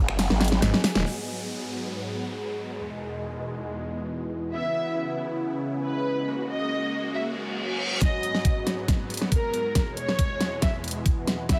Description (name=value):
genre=heavy wobble dubstep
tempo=138 BPM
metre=4/4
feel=half-time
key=G# minor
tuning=A4 = 441 Hz
part: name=supersaw chords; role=sustained chords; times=0.0-11.6 s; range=E2 to C#5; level=-37 LUFS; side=equal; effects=phaser, sidechain pumping, low-pass filter
part: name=growl bass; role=bass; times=0.0-0.6 s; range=F#1 to G#1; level=-27 LUFS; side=equal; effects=chorus, overdrive
part: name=deep dark ambient pad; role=texture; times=0.0-11.6 s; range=C#4 to A#5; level=-36 LUFS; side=equal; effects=chorus, built-in reverb, sidechain pumping
part: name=dubstep drum kit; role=drums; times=0.1-1.0, 8.0-11.6 s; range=finger snaps, hi-hat, ride cymbal, snare drum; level=-29 LUFS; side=equal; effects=studio reverb
part: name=snarling distorted saw bass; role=bass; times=0.6-1.0 s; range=D#1 to G#1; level=-27 LUFS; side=equal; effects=overdrive
part: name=downlifter and reverse cymbal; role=sound effects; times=1.1-4.5, 7.4-8.0 s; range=none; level=-36 LUFS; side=equal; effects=none
part: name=dark studio violin section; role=melody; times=4.5-11.6 s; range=A#4 to E5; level=-33 LUFS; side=equal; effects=digital delay
part: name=electronic kick drum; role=drums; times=8.0-11.6 s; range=none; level=-26 LUFS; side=equal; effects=studio reverb
room=moderate digital room reverb, RT60 1.2 s, digital ambience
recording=none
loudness=-27 LUFS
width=mono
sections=0.0-1.1 A section; 1.1-8.0 B section; 8.0-11.6 C section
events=drop 0.0-1.1; drum fill 0.2-1.1, 8.0-11.6; band accent 0.9; filter sweep on supersaw synth 1.1-8.0; reverse cymbal 7.4-8.0; build-up 8.0-11.6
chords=0.0 G#madd9; 1.1 G#m7; 2.8 E; 4.5 C#m7; 6.3 F#add9; 8.0 G#m7; 9.8 E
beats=0.19 0.62 | 1.06 1.49 1.93 2.36 | 2.80 3.23 3.67 4.10 | 4.54 4.97 5.41 5.84 | 6.28 6.71 7.14 7.58 | 8.01 8.45 8.88 9.32 | 9.75 10.19 10.62 11.06 | 11.49